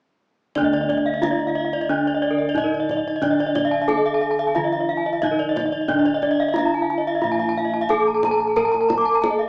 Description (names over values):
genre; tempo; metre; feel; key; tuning
Balinese gamelan; 90 BPM; 4/4; straight; D pelog; A4 = 439 Hz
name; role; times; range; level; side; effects
gamelan-type bronze metallophone; melody; 0.6-9.5 s; D4 to Bb4-40c; -22 LUFS; equal; none
gamelan-type bronze metallophone; accompaniment; 0.6-9.5 s; D3 to Bb3-40c; -38 LUFS; equal; none
gamelan-type bronze metallophone; arpeggios; 0.6-9.5 s; Bb4-40c to D6; -24 LUFS; equal; none
gamelan-type bronze metallophone; arpeggios; 0.6-9.4 s; Bb4-40c to D6; -25 LUFS; equal; none
gamelan-type bossed gongs; bass; 0.6-9.5 s; D2 to Bb4-40c; -27 LUFS; equal; none
kendang; percussion; 0.6-9.4 s; none; -32 LUFS; equal; none
room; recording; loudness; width
moderate large studio reverb, RT60 0.9 s; band playing live in one room, small speaker sound; -18 LUFS; side -39 dB against mid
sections
0.6-9.5 A section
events
none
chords
none